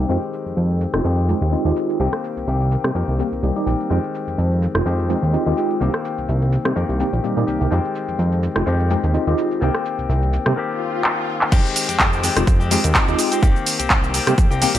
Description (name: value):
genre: filtered disco house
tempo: 126 BPM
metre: 4/4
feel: swing 55% on 16ths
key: F minor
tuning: A4 = 441 Hz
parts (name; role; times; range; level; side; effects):
- mellow tine electric piano; accompaniment; 0.0-14.7 s; G3 to G4; -23 LUFS; right 1 dB; overdrive, medium stereo tremolo, phaser, sidechain pumping, low-pass filter
- direct-recorded clean electric guitar; riff; 0.0-14.8 s; Eb3 to G4; -24 LUFS; left 5 dB; sidechain pumping, low-pass filter
- fat analog bass; bass; 0.0-14.8 s; F1 to C3; -20 LUFS; equal; sidechain pumping, low-pass filter
- house drum kit; drums; 0.1-14.8 s; crash cymbal, handclaps, hi-hat, rim click, shaker; -21 LUFS; equal; sidechain pumping on hats, low-pass filter on hats, sidechain pumping on cymbals, low-pass filter on cymbals, sidechain pumping on perc, low-pass filter on perc, low-pass filter on snare
- swell; sound effects; 10.7-11.5 s; none; -28 LUFS; left 3 dB; none
- electronic kick drum; drums; 11.5-14.5 s; none; -17 LUFS; equal; none
room: light reverb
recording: none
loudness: -17 LUFS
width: side -12 dB against mid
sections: 0.0-11.5 A section; 11.5-14.8 B section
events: filter sweep 0.0-11.5; swell 10.7-11.5; drum fill 11.0-11.5; drop 11.5-14.8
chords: 0.1 Fm9; 2.0 Cm7; 3.9 Fm9; 5.8 Cm7; 7.7 Fm9; 9.6 Cm7; 11.5 Fm9; 13.4 Cm7